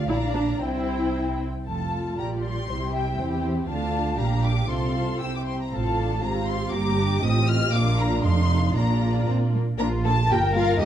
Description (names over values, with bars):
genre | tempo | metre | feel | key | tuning
quick classical-period movement for string orchestra | 111-122 BPM | 2/4 | rubato | Bb major from 5.7 s | A4 = 440 Hz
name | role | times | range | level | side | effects
dark studio violin section | melody | 0.0-10.9 s | Eb5 to F6 | -29 LUFS | left 3 dB | none
dark studio violin section | second line | 0.0-10.9 s | D4 to Bb5 | -31 LUFS | left 3 dB | none
dark studio double bass section | bass | 0.0-10.9 s | F1 to Bb2 | -26 LUFS | right 2 dB | none
warm studio cello section | bass | 0.0-10.9 s | F2 to Bb4 | -28 LUFS | right 2 dB | none
dark studio viola section | accompaniment | 0.1-10.9 s | G3 to G4 | -29 LUFS | equal | none
room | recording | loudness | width
moderate recital hall reverb, RT60 1.6 s | dark, warm production | -22 LUFS | side -10 dB against mid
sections
0.0-1.7 A section; 1.7-9.8 B section; 9.8-10.9 A section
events
none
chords
0.1 Bb; 0.6 C; 1.7 F; 2.2 Gm/Bb; 2.7 C; 3.7 Dm; 4.2 Gm7/Bb; 4.7 F/C; 5.2 C; 5.7 F/A; 6.2 Bb5/Ab; 6.7 Gm; 7.2 F7/A; 7.7 Bb; 8.2 F7; 8.7 Bb; 10.3 Gm7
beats
0.09 | 0.62 1.16 | 1.69 2.20 | 2.70 3.19 | 3.69 4.19 | 4.70 5.22 | 5.73 6.24 | 6.74 7.23 | 7.72 8.22 | 8.75 9.28 | 9.80 10.30 | 10.80